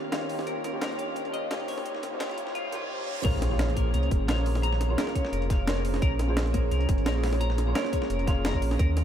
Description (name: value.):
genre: liquid drum and bass.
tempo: 173 BPM.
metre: 4/4.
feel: straight.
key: Bb dorian.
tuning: A4 = 439 Hz.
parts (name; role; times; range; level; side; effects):
dark baby grand piano; accompaniment; 0.0-8.8 s; Eb3 to C6; -32 LUFS; equal; ensemble chorus, ping-pong delay.
glassy FM pad; sustained chords; 0.0-9.0 s; Eb3 to C6; -37 LUFS; right 1 dB; ensemble chorus, built-in reverb.
riser, reverse cymbal and impact; sound effects; 0.0-4.6 s; none; -39 LUFS; right 1 dB; none.
twelve-string electric guitar; arpeggios; 0.1-8.9 s; Bb3 to Bb5; -36 LUFS; left 4 dB; wide subtle chorus, ping-pong delay.
breakbeat sampler-style drum kit; drums; 0.1-9.0 s; crash cymbal, hi-hat, snare drum; -35 LUFS; equal; none.
dusty soul sampler-style drum kit; drums; 0.1-9.0 s; hi-hat, snare drum; -42 LUFS; equal; high-pass filter on hats, high-pass filter on snare.
sub bass with octave; bass; 3.2-9.0 s; F1 to Eb2; -27 LUFS; equal; none.
electronic kick drum; drums; 3.2-8.9 s; none; -26 LUFS; equal; none.
room: moderate cathedral reverb, RT60 6.6 s.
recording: dreamy mix soaked in reverb, high-pass filter.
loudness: -25 LUFS.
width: side -10 dB against mid.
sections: 0.0-3.2 A section; 3.2-9.0 B section.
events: build-up 0.0-3.2; filter sweep on ambient pad 0.0-3.2; filter sweep on clean electric guitar 0.0-3.2; filter sweep 0.0-3.2; reverse cymbal 2.6-3.2; drop 3.2-9.0; impact 3.2-4.6.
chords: 0.0 Eb13; 3.2 Bbm9.